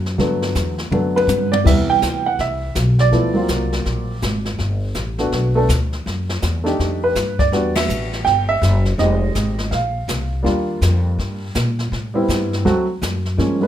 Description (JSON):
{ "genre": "jazz piano trio", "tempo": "164 BPM", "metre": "4/4", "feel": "swing 63% on 8ths", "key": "G major", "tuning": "A4 = 440 Hz", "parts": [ { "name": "upright bass", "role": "bass", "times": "0.0-13.7 s", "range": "F1 to Bb2", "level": "-20 LUFS", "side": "left 1 dB", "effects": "none" }, { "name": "jazz brush drum kit", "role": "drums", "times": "0.1-13.7 s", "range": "brushed snare drum, crash cymbal, hi-hat, kick drum, ride cymbal, snare drum, toms", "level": "-24 LUFS", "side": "left 1 dB", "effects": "none" }, { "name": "dark baby grand piano", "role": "melody", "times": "0.2-13.7 s", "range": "C3 to G5", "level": "-19 LUFS", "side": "right 2 dB", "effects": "none" } ], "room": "light reverb", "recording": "minimal, uncompressed stereo recording", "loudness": "-16 LUFS", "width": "side -11 dB against mid", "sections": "0.0-1.7 A section; 1.7-13.4 B section", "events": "drum fill 0.9-1.7; band accent 7.7", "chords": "0.0 Gmaj9; 1.7 Cmaj9; 3.1 D7alt; 4.6 Gmaj9; 6.1 F#m7; 6.8 F13; 7.5 Em9; 9.0 Fm9; 9.7 Bbsus2; 10.5 Ebmaj9; 11.9 Am9; 12.6 D7", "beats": "| 0.19 0.56 0.92 1.29 | 1.66 2.02 2.39 2.76 | 3.12 3.49 3.86 4.22 | 4.59 4.96 5.32 5.69 | 6.06 6.42 6.79 7.16 | 7.52 7.89 8.26 8.62 | 8.99 9.35 9.72 10.09 | 10.45 10.82 11.18 11.55 | 11.91 12.28 12.64 13.01 | 13.38" }